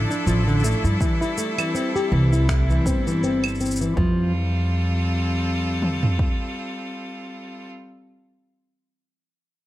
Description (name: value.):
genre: folktronica.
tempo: 81 BPM.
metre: 4/4.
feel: swing 56% on 16ths.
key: F major.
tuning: A4 = 440 Hz.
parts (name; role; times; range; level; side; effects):
bright string quartet; sustained chords; 0.0-7.7 s; F3 to A4; -28 LUFS; left 1 dB; none.
nylon-string guitar; arpeggios; 0.0-4.3 s; D3 to G4; -24 LUFS; equal; low-pass filter, digital delay.
upright bass; bass; 0.0-6.2 s; G1 to G2; -22 LUFS; equal; none.
electronic shaker, claves and finger snaps; drums; 0.1-3.9 s; none; -30 LUFS; right 2 dB; overdrive.
organic electronic drum kit; drums; 1.0-6.4 s; kick drum, toms; -23 LUFS; equal; overdrive.
room: moderate studio reverb, RT60 0.7 s.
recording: none.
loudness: -19 LUFS.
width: side -15 dB against mid.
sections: 0.0-4.0 A section; 4.0-6.9 B section.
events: filter sweep on upright bass 0.0-4.0; filter sweep on nylon-string guitar 0.0-4.0.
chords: 0.0 Dmadd9; 1.0 C6; 4.0 Fadd9.